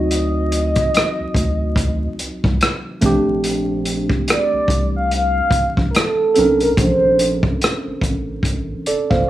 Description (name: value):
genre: R&B, neo-soul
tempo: 72 BPM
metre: 4/4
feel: swing 57% on 16ths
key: Bb major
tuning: A4 = 440 Hz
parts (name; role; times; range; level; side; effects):
- mellow horn-like synth lead; melody; 0.0-7.6 s; A4 to F5; -19 LUFS; right 1 dB; chorus
- tine electric piano; accompaniment; 0.0-9.3 s; F#3 to F5; -21 LUFS; right 2 dB; none
- rubbery square bass; bass; 0.0-9.3 s; G1 to D2; -22 LUFS; equal; none
- crunchy breakbeat drum kit; drums; 0.1-9.3 s; hi-hat, kick drum, rim click; -19 LUFS; equal; none
room: little or no reverb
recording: vinyl crackle, small room ambience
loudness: -15 LUFS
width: side -14 dB against mid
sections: 0.0-9.3 A section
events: none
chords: 0.0 D7b9; 3.0 Bbmaj9